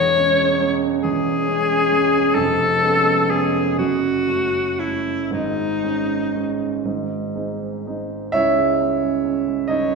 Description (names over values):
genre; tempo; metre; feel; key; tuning
classical, romantic duo for alto saxophone and grand piano; 38-46 BPM (dotted quarters); 6/8; rubato; C# minor; A4 = 440 Hz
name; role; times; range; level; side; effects
clear alto saxophone; melody; 0.0-9.9 s; D#4 to C#5; -19 LUFS; left 4 dB; none
dark baby grand piano; accompaniment; 0.0-9.9 s; E1 to E5; -20 LUFS; right 5 dB; none
room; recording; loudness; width
wet recital hall reverb, RT60 1.5 s; recorded in a church or concert hall, nothing above 10.6 kHz; -17 LUFS; side -4 dB against mid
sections
0.0-8.3 A section; 8.3-9.9 B section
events
none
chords
0.0 C#m/E; 2.4 C#7/E#; 3.8 F#m; 5.3 G#sus4; 6.8 G#; 8.3 C#m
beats
1.04 | 2.35 3.78 | 5.30 6.85 | 8.34 9.69